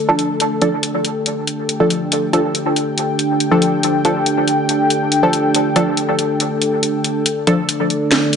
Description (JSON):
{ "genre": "deep dubstep", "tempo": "140 BPM", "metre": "4/4", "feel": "half-time", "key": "D minor", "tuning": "A4 = 440 Hz", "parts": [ { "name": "dark analog pad", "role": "sustained chords", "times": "0.0-8.4 s", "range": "D4 to G5", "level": "-18 LUFS", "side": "equal", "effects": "chorus" }, { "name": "filtered dub chord stab", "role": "stabs", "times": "0.1-7.5 s", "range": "F3 to A4", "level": "-18 LUFS", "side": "equal", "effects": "chorus, cassette tape, dub echo" }, { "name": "garage drum kit", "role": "drums", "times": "0.2-8.4 s", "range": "hi-hat, snare drum", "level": "-18 LUFS", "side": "left 1 dB", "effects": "none" } ], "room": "moderate plate reverb, RT60 2.0 s", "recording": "echo-heavy mix, nothing above 10.4 kHz", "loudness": "-14 LUFS", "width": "side -6 dB against mid", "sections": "0.0-7.3 A section; 7.3-8.4 B section", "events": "filter sweep on synth stab 0.0-7.3; filter sweep on analog synth pad 0.0-7.3; build-up 7.3-8.4", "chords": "0.0 Dm; 7.3 D5", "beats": "| 0.40 0.83 1.26 1.69 | 2.12 2.54 2.97 3.40 | 3.83 4.26 4.69 5.12 | 5.54 5.97 6.40 6.83 | 7.26 7.69 8.12" }